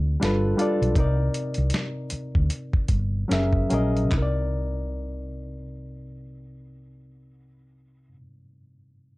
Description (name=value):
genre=R&B, neo-soul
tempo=71-82 BPM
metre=4/4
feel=swing 58% on 16ths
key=unclear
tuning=A4 = 440 Hz
part: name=barky reed electric piano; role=accompaniment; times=0.0-9.2 s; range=C3 to E5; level=-27 LUFS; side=left 1 dB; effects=overdrive
part: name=woody fretless electric bass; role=bass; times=0.0-8.2 s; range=F#1 to D2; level=-25 LUFS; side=equal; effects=none
part: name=dusty soul sampler-style drum kit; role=drums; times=0.2-4.3 s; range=handclaps, hi-hat, kick drum, snare drum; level=-25 LUFS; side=equal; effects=none
room=moderate studio ambience, RT60 0.5 s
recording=dark, warm production, lossy compression artefacts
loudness=-22 LUFS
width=side -20 dB against mid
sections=0.0-4.1 A section; 4.1-7.5 B section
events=slowing down 0.0-4.1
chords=0.2 G7; 1.0 Cm9; 3.3 F#9; 4.1 Cm9